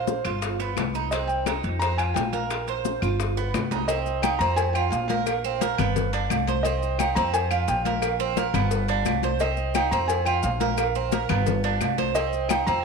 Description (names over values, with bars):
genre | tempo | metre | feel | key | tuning
latin, Cuban son and guajira | 174 BPM | 4/4 | straight | C minor | A4 = 444 Hz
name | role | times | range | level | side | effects
felt-muted upright piano | melody | 0.0-12.8 s | Eb5 to Bb5 | -27 LUFS | left 1 dB | slapback echo
Cuban tres | arpeggios | 0.0-12.8 s | B3 to C5 | -27 LUFS | right 8 dB | slapback echo
upright bass | bass | 0.0-12.8 s | G1 to F2 | -28 LUFS | left 1 dB | none
bongos and cowbell | percussion | 0.1-12.8 s | none | -33 LUFS | left 14 dB | none
congas | percussion | 0.1-12.8 s | none | -30 LUFS | left 14 dB | none
maracas | percussion | 0.1-12.8 s | none | -42 LUFS | left 16 dB | none
claves | percussion | 0.2-12.7 s | none | -36 LUFS | left 14 dB | none
timbales and agogo bells | percussion | 0.2-12.7 s | none | -32 LUFS | right 14 dB | none
room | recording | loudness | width
moderate echo chamber reverb, RT60 1.8 s, studio ambience | 1960s-style stereo with parts hard left and right | -22 LUFS | side -4 dB against mid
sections
0.0-3.9 A section; 3.9-12.8 B section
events
drum fill 3.0-3.9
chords
0.4 G7; 1.1 Cm; 1.8 F5; 2.5 Bbsus2; 3.2 G7; 3.9 Cm; 4.6 F5; 5.3 Bbsus2; 6.0 G; 6.6 Cm; 7.3 F5; 8.0 Bbsus2; 8.7 G; 9.4 Cm; 10.1 F5; 10.8 Bbsus2; 11.5 G; 12.2 Cm